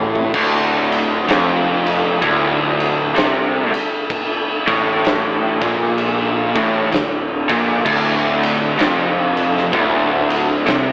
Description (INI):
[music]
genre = stoner and doom metal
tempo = 64 BPM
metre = 4/4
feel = swing 61% on 8ths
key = D minor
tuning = A4 = 440 Hz
[part]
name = tonewheel organ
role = sustained chords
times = 0.0-10.9 s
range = D3 to E4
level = -26 LUFS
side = equal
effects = none
[part]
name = fuzz guitar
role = riff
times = 0.0-10.9 s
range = D2 to C3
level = -22 LUFS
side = equal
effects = distortion
[part]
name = overdriven electric guitar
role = riff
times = 0.0-10.9 s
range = D2 to C3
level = -18 LUFS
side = equal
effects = none
[part]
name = fuzz fingered electric bass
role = bass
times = 0.0-10.9 s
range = D1 to C2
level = -22 LUFS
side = equal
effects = overdrive
[part]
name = oversized low-tuned drum kit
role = drums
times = 0.2-10.9 s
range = crash cymbal, kick drum, ride cymbal, snare drum, toms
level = -20 LUFS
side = equal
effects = none
[sound]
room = light reverb, studio reverb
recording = AM radio sound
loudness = -14 LUFS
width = side -27 dB against mid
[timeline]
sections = 0.0-10.9 A section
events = drum fill 0.0-0.3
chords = 0.0 Dm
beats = | 0.34 1.28 2.22 3.16 | 4.10 5.04 5.98 6.92 | 7.86 8.80 9.74 10.68